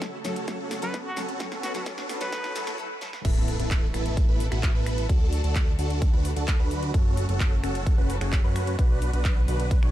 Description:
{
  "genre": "EDM, festival progressive house",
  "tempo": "130 BPM",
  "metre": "4/4",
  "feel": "straight",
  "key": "A major",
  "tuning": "A4 = 440 Hz",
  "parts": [
    { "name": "picked steel-string acoustic guitar", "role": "accompaniment", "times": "0.0-3.1 s", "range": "F#3 to A4", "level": "-40 LUFS", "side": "left 4 dB", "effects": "sidechain pumping, ping-pong delay" },
    { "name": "warm studio string section", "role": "sustained chords", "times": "0.0-9.9 s", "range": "B2 to B4", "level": "-38 LUFS", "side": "right 1 dB", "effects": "sidechain pumping" },
    { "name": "big supersaw lead", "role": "riff", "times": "0.0-9.9 s", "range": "B3 to C#5", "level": "-32 LUFS", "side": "right 1 dB", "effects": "phaser, sidechain pumping, ping-pong delay" },
    { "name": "big-room dance drum kit", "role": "drums", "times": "0.0-9.9 s", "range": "crash cymbal, finger snaps, handclaps, hi-hat, ride cymbal, snare drum", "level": "-36 LUFS", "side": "equal", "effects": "small room reverb" },
    { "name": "electronic kick drum", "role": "drums", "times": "0.0-9.8 s", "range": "none", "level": "-22 LUFS", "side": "equal", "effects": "high-pass filter on kick, small room reverb" },
    { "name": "riser, swell and impact", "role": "sound effects", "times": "0.1-5.1 s", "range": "none", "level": "-39 LUFS", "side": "equal", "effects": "none" },
    { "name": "trumpet with straight mute", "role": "melody", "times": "0.8-2.7 s", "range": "F#4 to B4", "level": "-37 LUFS", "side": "left 1 dB", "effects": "ping-pong delay" },
    { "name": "fat analog bass", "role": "bass", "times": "3.2-9.9 s", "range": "F#1 to F#2", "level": "-27 LUFS", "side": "equal", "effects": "sidechain pumping" }
  ],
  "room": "little or no reverb",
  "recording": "dark, warm production, high-pass filter",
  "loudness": "-23 LUFS",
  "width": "side -13 dB against mid",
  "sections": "0.0-3.2 A section; 3.2-9.9 B section",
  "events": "build-up 0.0-3.2; drum fill 0.0-2.8, 3.0; filter sweep on supersaw synth 0.0-3.2; riser 0.1-2.8; swell 2.3-3.2; break 2.8-3.2; drop 3.2-9.9; impact 3.2-5.1",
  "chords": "0.0 F#m; 1.4 Bm; 3.2 Asus2; 5.1 D; 6.9 F#m; 8.8 Bm"
}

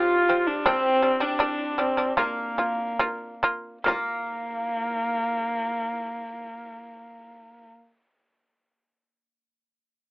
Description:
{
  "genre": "mongolian traditional, Mongolian folk",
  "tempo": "67-85 BPM",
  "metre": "4/4",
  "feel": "straight",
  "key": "Bb gong mode",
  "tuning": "A4 = 440 Hz",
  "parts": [
    { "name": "dark horsehead fiddle", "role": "melody", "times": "0.0-7.7 s", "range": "Bb3 to F4", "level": "-26 LUFS", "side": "equal", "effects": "none" },
    { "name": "steel-string zither", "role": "second line", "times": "0.0-7.7 s", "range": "Bb3 to G4", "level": "-30 LUFS", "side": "equal", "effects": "none" },
    { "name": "shamisen", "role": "arpeggios", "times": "0.0-7.7 s", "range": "F3 to F4", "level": "-26 LUFS", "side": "right 1 dB", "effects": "none" },
    { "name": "frame drum", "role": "percussion", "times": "0.7-4.3 s", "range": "none", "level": "-31 LUFS", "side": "equal", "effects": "none" }
  ],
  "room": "little or no reverb",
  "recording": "telephone sound",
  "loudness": "-23 LUFS",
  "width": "side -24 dB against mid",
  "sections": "0.0-3.9 A section; 3.9-7.4 B section",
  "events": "slowing down 0.0-3.9",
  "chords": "0.0 F5; 0.7 G5; 2.2 Bb5"
}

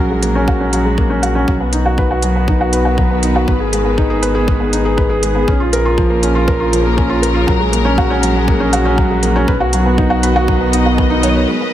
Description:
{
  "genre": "piano and strings electronica",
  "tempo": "120 BPM",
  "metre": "4/4",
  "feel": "straight",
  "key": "unclear",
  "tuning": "A4 = 440 Hz",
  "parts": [
    { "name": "dark studio string section", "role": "sustained chords", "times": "0.0-11.7 s", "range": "C#3 to D#5", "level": "-20 LUFS", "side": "left 1 dB", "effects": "none" },
    { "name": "felt-muted upright piano", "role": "riff", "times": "0.0-11.7 s", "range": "E#3 to B4", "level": "-15 LUFS", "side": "equal", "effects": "low-pass filter, ping-pong delay" },
    { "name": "warm sub bass", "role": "bass", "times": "0.0-11.5 s", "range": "G#1 to B1", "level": "-18 LUFS", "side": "equal", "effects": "sidechain pumping" },
    { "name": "electronic hi-hat", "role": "drums", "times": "0.2-11.3 s", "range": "none", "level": "-21 LUFS", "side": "right 2 dB", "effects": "studio reverb" },
    { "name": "electronic kick drum", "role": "drums", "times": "0.5-11.1 s", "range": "none", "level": "-16 LUFS", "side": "equal", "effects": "studio reverb" },
    { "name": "dark violin", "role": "melody", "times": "11.2-11.7 s", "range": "B4 to D#5", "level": "-21 LUFS", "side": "right 1 dB", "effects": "none" }
  ],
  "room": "light reverb",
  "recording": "none",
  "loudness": "-12 LUFS",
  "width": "side -12 dB against mid",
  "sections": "0.0-11.5 A section",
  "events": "none",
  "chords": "0.0 F#add9/A#; 1.5 B; 3.5 G#m; 5.5 A#m; 7.5 F#add9/A#; 9.5 B"
}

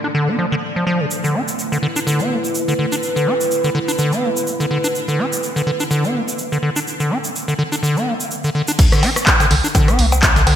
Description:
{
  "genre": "acid house",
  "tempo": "125 BPM",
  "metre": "4/4",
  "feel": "swing 56% on 16ths",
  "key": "unclear",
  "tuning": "A4 = 444 Hz",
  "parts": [
    { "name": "dark analog pad", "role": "sustained chords", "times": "0.0-8.8 s", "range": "A3 to D5", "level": "-23 LUFS", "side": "right 1 dB", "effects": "chorus, phaser, sidechain pumping" },
    { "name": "acid bass, square", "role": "riff", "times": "0.0-10.5 s", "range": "C3 to D4", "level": "-19 LUFS", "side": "equal", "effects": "overdrive, sidechain pumping, digital delay" },
    { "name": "tube shaker", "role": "percussion", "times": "1.1-10.4 s", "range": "none", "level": "-27 LUFS", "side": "right 2 dB", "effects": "none" },
    { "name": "warm sub bass", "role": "bass", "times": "8.8-10.5 s", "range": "C2 to D2", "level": "-17 LUFS", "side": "equal", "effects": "tube saturation, sidechain pumping" },
    { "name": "breakbeat sampler-style drum kit", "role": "drums", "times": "8.8-10.6 s", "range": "hi-hat, snare drum", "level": "-28 LUFS", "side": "right 1 dB", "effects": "none" },
    { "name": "electronic kick drum", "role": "drums", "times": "8.8-10.3 s", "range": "none", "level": "-15 LUFS", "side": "equal", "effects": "none" },
    { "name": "punchy analog drum machine", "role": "drums", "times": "8.8-10.6 s", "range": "cowbell, crash cymbal, handclaps, hi-hat, rim click", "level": "-16 LUFS", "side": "equal", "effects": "gated reverb" }
  ],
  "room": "moderate lush hall reverb, RT60 2.0 s",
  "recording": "bright 1980s-style digital production",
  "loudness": "-15 LUFS",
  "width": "side -10 dB against mid",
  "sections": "0.0-8.8 A section; 8.8-10.6 B section",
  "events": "drop 8.8-10.6",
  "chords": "0.0 D5"
}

